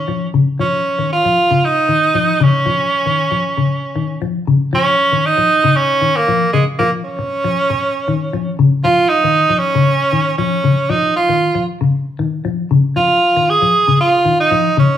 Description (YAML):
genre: afrobeat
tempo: 116 BPM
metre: 4/4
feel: straight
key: unclear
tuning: A4 = 441 Hz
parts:
  - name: edgy tenor saxophone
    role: melody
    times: 0.0-15.0 s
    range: Ab3 to Ab4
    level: -14 LUFS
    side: right 2 dB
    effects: none
  - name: semi-hollow electric guitar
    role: arpeggios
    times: 0.0-15.0 s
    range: Db3 to F3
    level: -17 LUFS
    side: left 4 dB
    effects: phaser
room: wet large studio reverb, RT60 0.9 s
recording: band playing live in one room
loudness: -12 LUFS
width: side -10 dB against mid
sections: 0.0-4.7 A section; 4.7-15.0 B section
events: none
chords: 0.0 Dbadd9